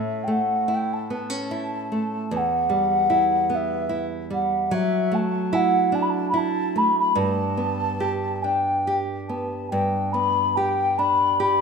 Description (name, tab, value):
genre	celtic folk, Celtic slow air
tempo	49 BPM (dotted quarters)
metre	6/8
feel	rubato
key	unclear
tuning	A4 = 439 Hz
part	mellow baroque flute	melody	0.0-11.6 s	E5 to B5	-22 LUFS	left 2 dB	none
part	nylon-string guitar	accompaniment	0.0-11.6 s	E2 to G4	-25 LUFS	right 2 dB	none
room	moderate recital hall reverb, RT60 1.6 s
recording	minimal, uncompressed stereo recording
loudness	-20 LUFS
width	side -5 dB against mid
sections	0.0-11.6 A section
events	none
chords	0.0 A; 2.3 Em; 4.7 Dadd9/F#; 7.2 G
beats	1.11 | 2.33 3.52 | 4.73 5.95 | 7.18 8.44 | 9.72 10.98